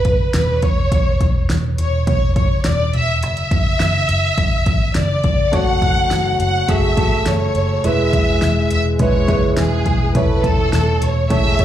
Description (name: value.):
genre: piano-driven pop.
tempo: 104 BPM.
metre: 4/4.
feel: straight.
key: unclear.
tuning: A4 = 440 Hz.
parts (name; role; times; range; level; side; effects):
warm studio violin section; melody; 0.0-11.6 s; G#4 to F#5; -20 LUFS; equal; none.
deep house drum kit; drums; 0.0-11.6 s; hi-hat, kick drum, snare drum; -19 LUFS; equal; overdrive.
vintage muted picked electric bass; bass; 0.1-11.6 s; E1 to G#1; -19 LUFS; equal; none.
mellow French horn section; second line; 5.5-11.6 s; F#3 to A4; -25 LUFS; left 4 dB; slapback echo.
warm upright piano; accompaniment; 5.5-11.6 s; E3 to C#5; -21 LUFS; right 2 dB; slapback echo.
room: light reverb.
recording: live gig heard through the venue's PA, club reverb.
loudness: -14 LUFS.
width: side -11 dB against mid.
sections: 0.0-11.6 A section.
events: none.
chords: 0.0 Dmaj9/E (rootless); 3.2 Dadd9/F#; 5.5 F#m; 7.8 E; 10.2 A/E.